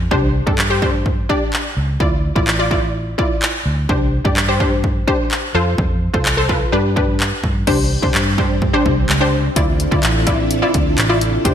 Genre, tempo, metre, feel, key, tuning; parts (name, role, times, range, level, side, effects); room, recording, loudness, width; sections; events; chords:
dance-pop; 127 BPM; 4/4; straight; C major; A4 = 440 Hz
vintage muted fingered electric bass; bass; 0.0-11.5 s; A1 to D3; -20 LUFS; equal; sidechain pumping
wide unison pluck; accompaniment; 0.1-11.5 s; D4 to D5; -19 LUFS; left 1 dB; sidechain pumping
punchy analog drum machine; drums; 0.1-11.5 s; crash cymbal, handclaps, hi-hat, kick drum; -18 LUFS; equal; gated reverb
string machine, full ensemble; sustained chords; 7.7-11.5 s; C3 to A4; -23 LUFS; right 1 dB; ensemble chorus, sidechain pumping
light reverb; bright 1980s-style digital production; -14 LUFS; side -9 dB against mid
0.0-7.7 A section; 7.7-11.5 B section
0.1 Csus2; 2.0 Dmadd9; 3.9 Csus2; 5.5 F; 6.7 G; 7.7 Csus2; 9.6 Dmadd9